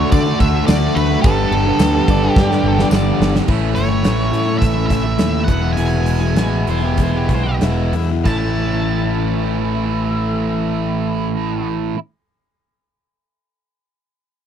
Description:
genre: classic rock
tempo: 90-108 BPM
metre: 4/4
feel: straight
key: A mixolydian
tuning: A4 = 441 Hz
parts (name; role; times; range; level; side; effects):
- octave-fuzz lead guitar; melody; 0.0-11.7 s; A4 to A5; -24 LUFS; equal; distortion, tape echo
- bright reed electric piano; accompaniment; 0.0-2.8 s; D4 to D5; -24 LUFS; right 6 dB; none
- tonewheel organ; sustained chords; 0.0-3.5 s; A3 to A4; -28 LUFS; equal; none
- overdriven semi-hollow guitar; riff; 0.0-12.0 s; E2 to G4; -22 LUFS; left 12 dB; none
- tight distorted guitar; riff; 0.0-12.0 s; E2 to G4; -21 LUFS; right 13 dB; distortion
- picked electric bass; bass; 0.0-11.9 s; E1 to D3; -20 LUFS; equal; none
- huge arena drum kit; drums; 0.1-8.4 s; crash cymbal, hi-hat, kick drum, snare drum; -20 LUFS; equal; none
- tambourine; percussion; 0.7-3.0 s; none; -35 LUFS; left 6 dB; none
- overdriven slide guitar; second line; 2.1-3.3, 6.7-11.7 s; E4 to D5; -28 LUFS; left 3 dB; none
room: little or no reverb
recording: none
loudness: -14 LUFS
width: side -9 dB against mid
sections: 0.0-3.5 A section; 3.5-8.3 B section; 8.3-10.9 C section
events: drum fill 2.4-3.5; slowing down 3.5-8.3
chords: 0.0 D; 1.2 Gadd9; 3.5 A; 5.5 E; 8.3 A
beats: 0.13 0.69 | 1.25 1.80 2.36 2.92 | 3.48 4.04 4.61 5.18 | 5.77 6.37 6.98 7.61 | 8.26 8.93 9.59 10.25

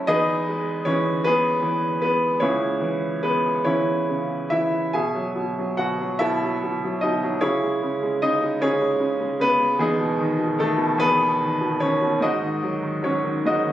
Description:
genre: classical, lyrical solo piano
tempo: 47-52 BPM (dotted quarters)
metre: 6/8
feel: rubato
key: C# minor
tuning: A4 = 440 Hz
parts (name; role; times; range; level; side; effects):
- bright baby grand piano; solo; 0.0-13.7 s; C#2 to G#5; -20 LUFS; equal; none
room: light reverb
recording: recorded on a phone in the room, club reverb, nothing above 10.7 kHz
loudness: -20 LUFS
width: side -12 dB against mid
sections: 0.0-4.9 A section; 4.9-13.7 B section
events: none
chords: 0.1 E6; 2.4 C#m7; 4.9 B7sus4; 7.4 C#m9; 9.8 Emaj7; 12.2 G#7sus4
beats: | 0.07 1.24 | 2.42 3.65 | 4.93 6.19 | 7.42 8.62 | 9.79 10.99 | 12.21 13.45

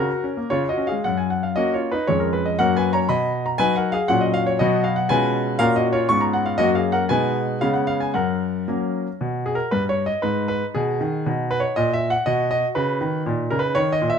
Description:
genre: classical-period piano sonatina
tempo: 118 BPM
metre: 2/4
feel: rubato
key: F# major, G# minor from 9.2 s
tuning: A4 = 440 Hz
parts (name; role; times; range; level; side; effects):
- bright concert grand piano; solo; 0.0-14.2 s; E#2 to C#6; -19 LUFS; left 1 dB; none
room: light reverb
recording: close, detailed microphones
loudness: -19 LUFS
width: side -7 dB against mid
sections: 0.0-1.0 A section; 1.0-9.2 B section; 9.2-14.2 C section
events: none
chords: 0.0 F#/C#; 0.5 C#; 1.0 F#; 2.1 C#/E#; 2.6 F#; 3.1 B; 4.1 F#/A#; 4.6 B; 5.1 C#7/B; 5.6 F#/A#; 6.1 C#7/G#; 6.6 F#; 7.1 G#m/B; 7.6 C#5; 8.1 F#; 9.2 N.C.; 10.2 G#m; 11.3 B; 11.8 N.C.; 12.3 B; 13.3 D#5/A#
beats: 0.51 | 1.05 1.56 | 2.07 2.58 | 3.09 3.59 | 4.10 4.60 | 5.10 5.60 | 6.10 6.60 | 7.10 7.62 | 8.15 8.68 | 9.21 9.72 | 10.24 10.75 | 11.26 11.77 | 12.27 12.76 | 13.26 13.77

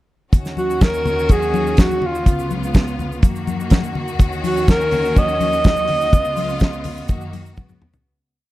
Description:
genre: disco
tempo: 124 BPM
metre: 4/4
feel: straight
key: Eb minor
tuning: A4 = 440 Hz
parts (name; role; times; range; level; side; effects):
- clear studio string section; sustained chords; 0.3-8.1 s; Db2 to Gb4; -24 LUFS; equal; none
- damped 70s drum kit; drums; 0.3-8.0 s; hi-hat, kick drum, snare drum, toms; -14 LUFS; equal; none
- congas; percussion; 0.3-7.9 s; none; -27 LUFS; left 5 dB; none
- egg shaker; percussion; 0.3-8.0 s; none; -44 LUFS; right 8 dB; none
- breathy alto saxophone; melody; 0.6-7.6 s; F4 to Eb5; -20 LUFS; right 1 dB; none
room: little or no reverb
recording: dark, warm production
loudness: -15 LUFS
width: side -16 dB against mid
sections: 0.3-8.1 breakdown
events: fade-out 6.1-8.1; drum fill 7.6-8.1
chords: 0.3 Ebm7; 2.3 Db7; 3.2 Gb6; 4.2 Ebm7; 6.1 Db7; 7.1 Gb6; 7.6 Db7sus4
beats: | 0.33 0.81 1.30 1.78 | 2.27 2.75 3.23 3.72 | 4.20 4.68 5.17 5.65 | 6.13 6.61 7.09 7.57

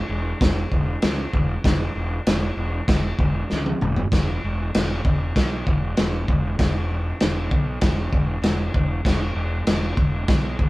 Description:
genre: garage rock duo or trio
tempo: 97 BPM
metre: 4/4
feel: straight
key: unclear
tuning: A4 = 440 Hz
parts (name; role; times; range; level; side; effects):
- fuzz fingered electric bass; bass; 0.1-10.7 s; E1 to C#2; -25 LUFS; equal; overdrive, tube saturation
- vintage drum kit; drums; 0.4-10.7 s; crash cymbal, kick drum, snare drum, toms; -21 LUFS; equal; none
room: light reverb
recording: band playing live in one room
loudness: -20 LUFS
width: side -20 dB against mid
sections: 0.0-4.1 A section; 4.1-10.7 B section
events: drum fill 3.5-4.1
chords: none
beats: 0.40 1.02 | 1.65 2.27 2.88 3.50 | 4.12 4.74 5.36 5.97 | 6.59 7.21 7.82 8.44 | 9.05 9.67 10.28

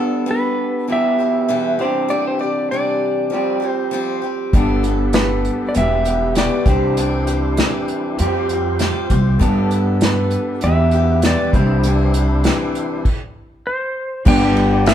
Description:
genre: folk rock and heartland rock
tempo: 99 BPM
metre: 4/4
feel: straight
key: G mixolydian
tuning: A4 = 440 Hz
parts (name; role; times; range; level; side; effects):
- picked swing-style acoustic guitar; accompaniment; 0.0-14.9 s; E2 to A4; -24 LUFS; left 6 dB; none
- electric guitar through a small old amp; riff; 0.0-14.9 s; E2 to A4; -21 LUFS; right 2 dB; none
- clean lap steel guitar; melody; 0.3-14.9 s; B4 to G5; -21 LUFS; equal; none
- tonewheel organ; sustained chords; 4.5-14.9 s; D4 to D5; -30 LUFS; left 1 dB; slow rotary speaker, overdrive
- upright bass; bass; 4.5-14.9 s; E1 to G2; -18 LUFS; equal; none
- unplugged drum kit; drums; 4.5-14.9 s; crash cymbal, hi-hat, kick drum, ride cymbal, snare drum; -18 LUFS; equal; none
- bright upright piano; accompaniment; 14.3-14.9 s; D4 to F5; -26 LUFS; right 6 dB; none
room: moderate large studio reverb, RT60 1.3 s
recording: band playing live in one room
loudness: -15 LUFS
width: side -10 dB against mid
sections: 0.0-14.3 A section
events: stop 13.0-14.3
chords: 0.0 Gadd9; 0.9 Em; 1.8 Cadd9; 3.3 Fsus2; 4.5 Gadd9; 5.8 Em; 6.7 Cadd9; 8.2 Fsus2; 9.4 Gadd9; 10.6 Em; 11.5 Cadd9; 13.0 N.C.; 14.3 G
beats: 0.27 0.88 1.49 | 2.10 2.71 3.32 3.93 | 4.54 5.14 5.75 6.36 | 6.97 7.58 8.19 8.80 | 9.40 10.01 10.62 11.23 | 11.83 12.44 13.05 13.65 | 14.26 14.86

